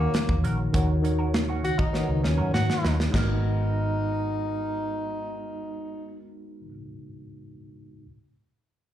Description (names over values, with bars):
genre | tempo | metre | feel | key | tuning
lush 1970s-style soul | 100 BPM | 4/4 | straight | G# minor | A4 = 440 Hz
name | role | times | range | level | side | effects
mellow tenor saxophone | melody | 0.0-6.3 s | A#3 to F#4 | -30 LUFS | equal | slapback echo
tine electric piano | accompaniment | 0.0-8.1 s | D#3 to D#5 | -31 LUFS | left 1 dB | overdrive, fast stereo tremolo, slapback echo
electric guitar through a small old amp | riff | 0.0-6.7 s | B3 to C#5 | -39 LUFS | right 4 dB | wah, wide subtle chorus, slapback echo
vintage muted fingered electric bass | bass | 0.0-6.7 s | G#1 to G#2 | -27 LUFS | equal | none
modern studio drum kit | drums | 0.1-3.3 s | china cymbal, hi-hat, kick drum, snare drum | -27 LUFS | equal | none
room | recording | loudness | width
light reverb | live gig heard through the venue's PA, tape saturation, club reverb | -23 LUFS | side -11 dB against mid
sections
0.0-3.1 A section; 3.1-5.5 B section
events
drum fill 1.9-3.1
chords
0.0 D#m7; 3.1 G#m9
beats
0.14 | 0.74 1.34 1.94 2.54 | 3.14 3.74 4.34 4.94